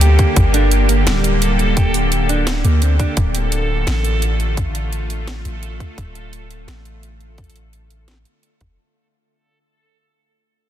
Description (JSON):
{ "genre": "half-time drum and bass", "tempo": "171 BPM", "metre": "4/4", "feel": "swing 55% on 16ths, half-time", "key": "unclear", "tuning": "A4 = 442 Hz", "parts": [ { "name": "bowed-like drone", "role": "sustained chords", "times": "0.0-8.7 s", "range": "D3 to G4", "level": "-23 LUFS", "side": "equal", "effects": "built-in reverb, sidechain pumping" }, { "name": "mellow electric guitar", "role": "arpeggios", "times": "0.0-3.2 s", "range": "G3 to G4", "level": "-23 LUFS", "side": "right 4 dB", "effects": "dub echo" }, { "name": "long sustained 808-style bass", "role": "bass", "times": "0.0-8.8 s", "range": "D1 to D2", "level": "-17 LUFS", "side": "equal", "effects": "none" }, { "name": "drum and bass drum kit", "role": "drums", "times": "0.0-8.7 s", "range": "hi-hat, snare drum", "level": "-25 LUFS", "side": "right 1 dB", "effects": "overdrive, studio reverb" }, { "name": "backwards swelling texture", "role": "texture", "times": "0.0-8.8 s", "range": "A4", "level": "-28 LUFS", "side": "right 1 dB", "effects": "built-in reverb" }, { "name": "electronic kick drum", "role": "drums", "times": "0.2-8.7 s", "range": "none", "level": "-16 LUFS", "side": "equal", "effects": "overdrive, studio reverb" } ], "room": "light reverb, digital ambience", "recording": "dense, heavily limited modern master", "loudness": "-14 LUFS", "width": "side -11 dB against mid", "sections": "0.0-8.8 A section", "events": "fade-out 0.0-8.8", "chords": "0.0 Gm; 3.2 Dm", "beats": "0.01 | 0.36 0.71 1.06 1.42 | 1.77 2.12 2.47 2.82 | 3.17 3.52 3.87 4.22 | 4.57 4.92 5.28 5.63 | 5.98 6.33 6.68 7.03 | 7.38 7.73 8.08 8.43" }